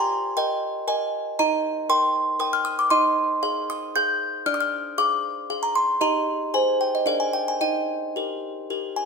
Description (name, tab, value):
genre	classical, lullaby for music box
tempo	116 BPM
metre	3/4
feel	rubato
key	Eb major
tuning	A4 = 440 Hz
part	music box	solo	0.0-9.1 s	D4 to G6	-21 LUFS	equal	none
room	wet stone room reverb, RT60 1.4 s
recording	band playing live in one room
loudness	-21 LUFS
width	side -5 dB against mid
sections	0.0-9.1 A section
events	none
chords	0.0 Eb/G; 1.4 Eb; 2.9 Fm7/Eb; 4.5 Dm7b5; 6.0 Eb; 6.5 Ab; 7.1 Bb7/D; 7.6 Eb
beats	0.37 0.89 | 1.39 1.90 2.41 | 2.92 3.44 3.95 | 4.46 4.98 5.50 | 6.01 6.53 7.06 | 7.60 8.15 8.69